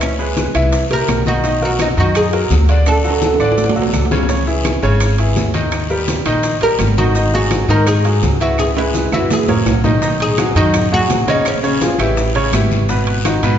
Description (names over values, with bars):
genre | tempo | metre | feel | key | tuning
Afro-Cuban jazz | 168 BPM | 4/4 | straight | B major from 10.0 s | A4 = 438 Hz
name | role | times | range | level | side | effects
oud | melody | 0.0-3.5, 6.6-12.5 s | C#4 to Bb4 | -19 LUFS | equal | none
bright upright piano | accompaniment | 0.0-13.6 s | B2 to E5 | -18 LUFS | equal | none
upright bass | bass | 0.0-13.6 s | G#1 to G#2 | -17 LUFS | equal | none
bongos | percussion | 0.0-13.6 s | none | -27 LUFS | left 4 dB | none
claves | percussion | 0.0-13.4 s | none | -33 LUFS | right 6 dB | none
congas | percussion | 0.0-13.4 s | none | -24 LUFS | left 1 dB | none
guiro | percussion | 0.0-13.6 s | none | -29 LUFS | left 4 dB | none
maracas | percussion | 0.0-13.6 s | none | -33 LUFS | right 4 dB | none
timbales | percussion | 0.0-13.6 s | none | -24 LUFS | right 6 dB | none
room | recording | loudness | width
wet concert hall reverb, RT60 2.3 s | recorded in a church or concert hall, nothing above 7.6 kHz | -13 LUFS | side -9 dB against mid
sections
0.0-10.0 A section; 10.0-13.6 B section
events
drum fill 2.9-4.3, 8.6-10.0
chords
0.0 C#m7; 0.7 C7; 1.4 Bmaj7; 2.9 D; 4.3 C#madd9; 5.7 D#; 7.2 G#7sus4; 8.6 C#m7; 9.3 F#9; 10.0 B69; 11.5 A#m7; 12.2 A7; 12.9 G#m7